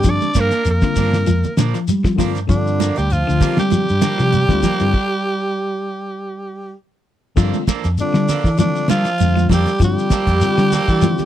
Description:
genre	afrobeat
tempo	98 BPM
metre	4/4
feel	swing 54% on 16ths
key	G minor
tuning	A4 = 438 Hz
part	growling tenor saxophone	melody	0.0-11.3 s	D4 to D5	-21 LUFS	equal	none
part	warm trombone	second line	0.0-11.3 s	D3 to D4	-24 LUFS	right 4 dB	none
part	tine electric piano	accompaniment	0.0-11.3 s	D3 to G4	-25 LUFS	left 13 dB	none
part	fingered electric bass	bass	0.0-11.1 s	D2 to G3	-19 LUFS	equal	none
part	damped 70s drum kit	drums	0.0-11.3 s	crash cymbal, hi-hat, kick drum, snare drum	-19 LUFS	equal	none
part	shekere	percussion	0.0-11.3 s	none	-25 LUFS	left 2 dB	none
part	clean electric guitar	arpeggios	0.1-11.2 s	D3 to F3	-22 LUFS	left 6 dB	harmonic tremolo
part	congas	percussion	0.2-11.3 s	none	-23 LUFS	right 16 dB	none
part	electric guitar at the edge of break-up	stabs	0.4-11.1 s	F3 to A4	-27 LUFS	right 10 dB	none
room	little or no reverb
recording	dry, close 1970s-style studio recording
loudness	-14 LUFS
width	side -11 dB against mid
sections	0.0-7.4 A section; 7.4-11.3 B section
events	stop 4.9-7.4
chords	0.0 Gm7; 7.4 Gm9

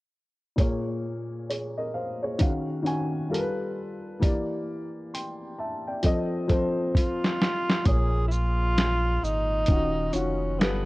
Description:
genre	lo-fi hip hop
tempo	66 BPM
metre	4/4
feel	swing 62% on 16ths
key	Bb minor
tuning	A4 = 440 Hz
part	dark upright piano	accompaniment	0.6-10.9 s	Bb2 to C6	-28 LUFS	left 1 dB	cassette tape, low-pass filter
part	lo-fi sampler-style drum kit	drums	0.6-10.9 s	hi-hat, kick drum, shaker, snare drum	-24 LUFS	equal	overdrive
part	breathy tenor saxophone	melody	7.0-10.9 s	B3 to Ab4	-28 LUFS	right 1 dB	low-pass filter
part	warm sub bass	bass	7.9-10.9 s	Eb1 to Bb1	-27 LUFS	equal	none
room	light reverb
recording	cassette tape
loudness	-24 LUFS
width	side -20 dB against mid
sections	0.6-7.9 A section; 7.9-10.9 B section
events	drum fill 6.0-7.9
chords	0.6 Bbm7; 2.4 Ebm9; 3.3 G9; 4.2 Em7b5; 6.0 F7; 7.9 Bbm7; 9.7 Ebm9

